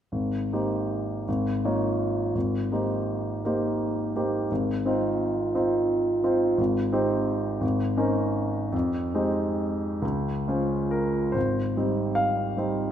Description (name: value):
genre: classical, impressionist solo piano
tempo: 64-88 BPM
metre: 3/4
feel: rubato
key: Ab major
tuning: A4 = 440 Hz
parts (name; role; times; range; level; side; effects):
- warm baby grand piano; solo; 0.1-12.9 s; Ab1 to F5; -24 LUFS; equal; none
room: moderate scoring stage reverb, RT60 1.9 s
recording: none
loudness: -24 LUFS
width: side -9 dB against mid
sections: 0.1-11.4 A section; 11.4-12.9 B section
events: none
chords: 0.1 Abmaj9; 1.3 Db69/Ab; 2.4 Abmaj9; 4.5 Ab6; 6.6 Abmaj7; 7.6 Bbm11/Ab; 8.7 Fm9; 10.0 Dbmaj7; 11.4 Abmaj7